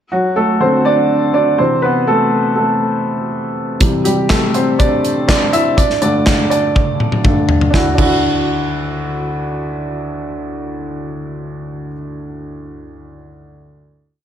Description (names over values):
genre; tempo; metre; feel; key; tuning
piano-driven pop; 122 BPM; 4/4; straight; D mixolydian; A4 = 440 Hz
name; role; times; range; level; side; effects
clear baby grand piano; accompaniment; 0.1-14.2 s; D2 to E5; -15 LUFS; equal; slapback echo
modern studio drum kit; drums; 3.8-8.1 s; crash cymbal, handclaps, hi-hat, kick drum, snare drum, toms; -16 LUFS; equal; none
room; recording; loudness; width
wet recital hall reverb, RT60 1.3 s, studio reverb; big arena sound; -13 LUFS; side -9 dB against mid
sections
0.0-7.7 verse; 7.7-11.7 final chord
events
grand piano solo 0.0-7.7; drum fill 6.8-7.7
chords
0.0 D; 1.6 Amadd9/C; 3.8 C; 5.8 Gsus2; 7.7 Dadd9